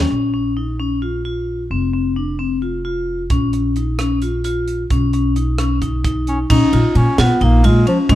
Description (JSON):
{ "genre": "progressive instrumental, band music in an uneven meter", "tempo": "263 BPM (eighths)", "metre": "7/8", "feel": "straight", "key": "Bb phrygian", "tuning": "A4 = 442 Hz", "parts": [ { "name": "breathy bass clarinet", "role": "melody", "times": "0.0-0.1, 6.3-8.2 s", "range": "F3 to Eb4", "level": "-18 LUFS", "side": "equal", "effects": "none" }, { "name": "vibraphone with hard mallets", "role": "arpeggios", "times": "0.0-8.2 s", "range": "C4 to F4", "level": "-20 LUFS", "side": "left 2 dB", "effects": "none" }, { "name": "upright bass", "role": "bass", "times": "0.0-8.2 s", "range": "F1 to Bb2", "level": "-18 LUFS", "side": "equal", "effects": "none" }, { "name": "crisp fusion drum kit", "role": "drums", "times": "3.3-8.2 s", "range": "crash cymbal, hi-hat, kick drum, ride cymbal, rim click, snare drum", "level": "-21 LUFS", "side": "right 1 dB", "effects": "none" } ], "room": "light reverb", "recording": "dark, warm production", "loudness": "-15 LUFS", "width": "side -14 dB against mid", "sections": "0.1-6.5 A section; 6.5-8.2 B section", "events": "none", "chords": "0.1 Bbm; 1.7 F5; 3.3 Bbm; 4.9 Badd9; 6.5 Bbm" }